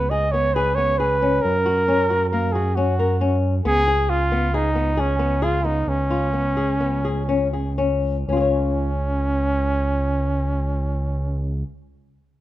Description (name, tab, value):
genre	contemporary instrumental, chamber music in an uneven meter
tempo	116-136 BPM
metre	5/4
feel	straight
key	Db mixolydian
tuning	A4 = 439 Hz
part	breathy flugelhorn	melody	0.0-11.6 s	Db4 to Eb5	-22 LUFS	right 1 dB	none
part	flamenco guitar	arpeggios	0.0-11.8 s	Bb3 to Db5	-25 LUFS	left 5 dB	none
part	smooth synth bass	bass	0.0-11.6 s	Db2 to Gb2	-23 LUFS	right 1 dB	none
room	light reverb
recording	none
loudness	-19 LUFS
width	side -14 dB against mid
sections	0.0-8.3 A section; 8.3-10.9 B section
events	slowing down 4.5-8.3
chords	0.0 Db5; 1.4 Gb; 3.6 Abm/Db; 5.9 Db7(no3); 8.3 Db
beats	0.12 0.56 1.00 | 1.44 1.88 2.32 2.77 3.21 | 3.65 4.09 4.53 4.97 5.42 | 5.87 6.33 6.80 7.28 7.78 | 8.29 8.80 9.32 9.84 10.36